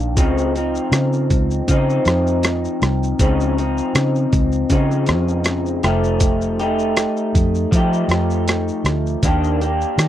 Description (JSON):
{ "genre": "indie pop, bedroom pop", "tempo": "80 BPM", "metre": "4/4", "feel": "swing 55% on 16ths", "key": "unclear", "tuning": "A4 = 440 Hz", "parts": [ { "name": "electric guitar through a small old amp", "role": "accompaniment", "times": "0.0-10.1 s", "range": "Db3 to G4", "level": "-19 LUFS", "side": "left 1 dB", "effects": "lush chorus, warbly pitch drift" }, { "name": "vintage muted fingered electric bass", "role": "bass", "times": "0.0-10.1 s", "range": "F1 to F3", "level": "-20 LUFS", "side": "equal", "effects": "none" }, { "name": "boom bap sampler-style drum kit", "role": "drums", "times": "0.0-10.1 s", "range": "hi-hat, kick drum, rim click, shaker", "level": "-19 LUFS", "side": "equal", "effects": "none" } ], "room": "little or no reverb", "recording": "dry, close 1970s-style studio recording", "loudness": "-16 LUFS", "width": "side -12 dB against mid", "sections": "0.0-10.1 A section", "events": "none", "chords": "0.2 Dbmaj9; 5.8 F9; 9.2 Ebmaj7" }